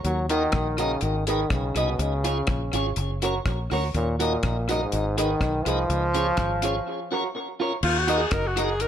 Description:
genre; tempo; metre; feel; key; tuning
ska; 123 BPM; 4/4; straight; Eb minor; A4 = 439 Hz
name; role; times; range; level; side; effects
clear trombone; melody; 0.0-7.1 s; Gb2 to Gb3; -27 LUFS; equal; tape echo, plate reverb
fingered electric bass; bass; 0.0-8.9 s; Gb1 to Eb2; -28 LUFS; equal; none
deep reggae drum kit; drums; 0.0-8.9 s; crash cymbal, hi-hat, kick drum, rim click; -29 LUFS; left 2 dB; tape echo
electric guitar at the edge of break-up; accompaniment; 0.3-8.7 s; F4 to Eb5; -29 LUFS; right 4 dB; tape echo, plate reverb
tonewheel organ; stabs; 0.3-8.7 s; Db4 to Eb5; -32 LUFS; left 4 dB; slow rotary speaker, tape echo, plate reverb
breathy alto saxophone; melody; 7.8-8.9 s; F4 to Bb4; -26 LUFS; equal; tape echo, plate reverb
room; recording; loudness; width
moderate studio reverb, RT60 0.6 s; none; -22 LUFS; side -9 dB against mid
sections
0.0-7.8 A section; 7.8-8.9 B section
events
break 6.9-7.8; alto saxophone solo 7.8-8.9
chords
0.1 Ebm; 1.0 Abm; 2.0 Db; 3.0 Gb; 3.9 Ebm; 4.9 Abm; 5.9 Db; 6.9 Gb; 7.3 Bbm; 7.8 Ebm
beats
| 0.05 0.54 1.03 1.51 | 2.00 2.49 2.97 3.46 | 3.94 4.43 4.92 5.40 | 5.89 6.38 6.86 7.35 | 7.83 8.32 8.80

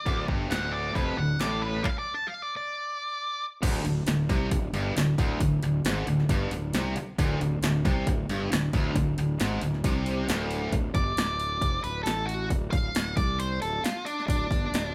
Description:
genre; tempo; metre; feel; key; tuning
blues rock power trio and southern rock; 135 BPM; 4/4; straight; unclear; A4 = 439 Hz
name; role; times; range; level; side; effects
octave-fuzz lead guitar; melody; 0.0-3.4, 10.9-14.9 s; D4 to A5; -33 LUFS; equal; distortion
tight distorted guitar; riff; 0.1-10.7 s; D2 to C3; -30 LUFS; equal; distortion
fuzz fingered electric bass; bass; 0.1-14.9 s; D1 to C2; -35 LUFS; equal; overdrive
punchy analog drum machine; drums; 0.1-14.8 s; crash cymbal, handclaps, hi-hat, kick drum, snare drum; -31 LUFS; equal; overdrive
room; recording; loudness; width
moderate large studio reverb, RT60 1.1 s; band playing live in one room; -28 LUFS; mono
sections
0.0-3.6 A section; 3.6-10.7 B section; 10.7-14.9 C section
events
stop 1.8-3.6; break 10.5; lead electric guitar solo 10.7-14.9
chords
0.0 D5; 3.6 D7sus4; 10.7 N.C.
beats
| 0.06 0.51 0.95 1.40 | 1.85 2.29 2.74 3.18 | 3.63 4.07 4.52 4.96 | 5.41 5.85 6.29 6.74 | 7.18 7.62 8.07 8.51 | 8.95 9.40 9.84 10.28 | 10.73 11.17 11.62 12.06 | 12.50 12.95 13.39 13.83 | 14.28 14.72

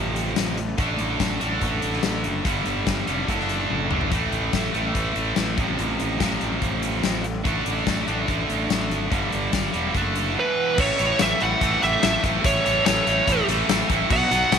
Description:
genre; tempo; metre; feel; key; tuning
classic rock; 144 BPM; 4/4; straight; unclear; A4 = 441 Hz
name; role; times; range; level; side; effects
distorted electric guitar; riff; 0.0-14.6 s; E2 to D4; -24 LUFS; right 2 dB; overdrive
fuzz fingered electric bass; bass; 0.0-14.6 s; E1 to B1; -28 LUFS; right 1 dB; overdrive
huge arena drum kit; drums; 0.2-14.6 s; crash cymbal, hi-hat, kick drum, snare drum, tambourine, toms; -26 LUFS; left 4 dB; none
fuzz lead guitar; melody; 10.4-14.6 s; B4 to F#5; -22 LUFS; right 2 dB; distortion, slapback echo
room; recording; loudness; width
light reverb, studio reverb; 1960s-style stereo; -20 LUFS; side -7 dB against mid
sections
0.0-10.8 A section; 10.8-14.6 B section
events
drum fill 3.7-4.1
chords
0.0 F/A; 0.8 D5/A; 2.5 G5; 3.3 D/F#; 4.1 A5; 5.6 F/A; 7.5 D5/A; 9.1 G5; 10.0 D/F#; 10.4 E5; 10.8 A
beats
0.37 | 0.79 1.21 1.62 2.04 | 2.45 2.87 3.29 3.70 | 4.12 4.54 4.95 5.37 | 5.79 6.20 6.62 7.04 | 7.45 7.87 8.29 8.70 | 9.12 9.54 9.95 10.37 | 10.79 11.20 11.62 12.03 | 12.45 12.86 13.28 13.69 | 14.11 14.52

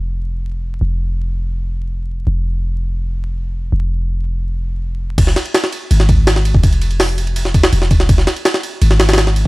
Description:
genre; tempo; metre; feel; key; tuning
drum and bass, jungle; 165 BPM; 4/4; straight; F minor; A4 = 436 Hz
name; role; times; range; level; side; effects
warm 808-style bass; bass; 0.0-9.4 s; F1 to Ab1; -16 LUFS; equal; tube saturation
jungle sampler-style drum kit; drums; 5.2-9.4 s; crash cymbal, hi-hat, kick drum, ride cymbal, snare drum; -14 LUFS; equal; studio reverb
room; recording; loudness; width
little or no reverb; vinyl crackle; -14 LUFS; side -21 dB against mid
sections
0.0-5.2 A section; 5.2-9.5 B section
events
drop 5.2-9.5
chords
none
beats
0.09 0.45 | 0.82 1.18 1.54 1.91 | 2.27 2.63 3.00 3.36 | 3.73 4.09 4.45 4.82 | 5.18 5.54 5.91 6.27 | 6.63 7.00 7.36 7.73 | 8.09 8.45 8.82 9.18

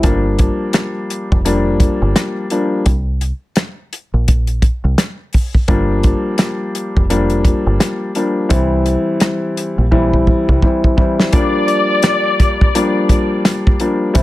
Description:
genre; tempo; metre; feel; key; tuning
hip hop, boom-bap hip-hop; 85 BPM; 4/4; swing 61% on 16ths; G dorian; A4 = 440 Hz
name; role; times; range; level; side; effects
warm upright piano; accompaniment; 0.0-14.2 s; E3 to E4; -16 LUFS; left 2 dB; cassette tape, high-pass filter, low-pass filter
deep dub fingered electric bass; bass; 0.0-14.2 s; F1 to C2; -17 LUFS; equal; none
warm soul drum kit; drums; 0.0-14.2 s; hi-hat, kick drum, rim click, snare drum; -14 LUFS; equal; none
warm studio violin section; melody; 11.3-12.9 s; D5; -17 LUFS; left 2 dB; high-pass filter, low-pass filter, ping-pong delay
room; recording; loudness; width
light reverb; none; -13 LUFS; side -16 dB against mid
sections
0.0-11.3 A section; 11.3-14.2 B section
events
drum fill 9.9-11.3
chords
0.0 Gm7; 2.9 Bbsus2; 5.7 Gm7; 8.5 C; 11.3 Gm7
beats
| 0.04 0.74 1.45 2.15 | 2.86 3.57 4.27 4.98 | 5.68 6.39 7.09 7.80 | 8.51 9.21 9.92 10.62 | 11.33 12.04 12.74 13.45 | 14.15

